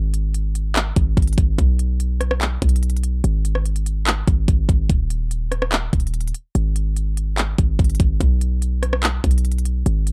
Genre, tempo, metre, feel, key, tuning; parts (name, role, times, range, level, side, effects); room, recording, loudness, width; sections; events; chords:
hip hop, trap; 145 BPM; 4/4; half-time; A4 = 439 Hz
hard-hitting 808-style bass; bass; 0.0-10.1 s; Eb1 to Cb2; -22 LUFS; equal
trap drum kit; drums; 0.1-10.1 s; handclaps, hi-hat, kick drum, rim click; -22 LUFS; equal; overdrive
little or no reverb; dark, warm production; -20 LUFS; mono
0.0-10.1 A section